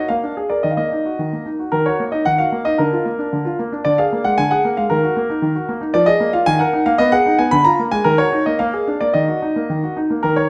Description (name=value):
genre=classical-period piano sonatina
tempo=113 BPM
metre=2/4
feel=straight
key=Eb minor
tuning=A4 = 440 Hz
part: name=clear concert grand piano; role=solo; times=0.0-10.5 s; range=D3 to Cb6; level=-18 LUFS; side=equal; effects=none
room=wet stone room reverb, RT60 1.3 s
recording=none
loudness=-18 LUFS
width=mono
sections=0.0-1.7 A section; 1.7-10.2 B section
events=none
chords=0.1 Bb7; 0.6 Ebm; 2.8 Bb/D; 3.9 Bb7/D; 4.9 Ebm; 5.9 Bb5/F; 6.5 Ebm; 7.0 Abm/Cb; 7.5 Bb7/D; 8.1 Ebm; 8.6 Bb7; 9.1 Ebm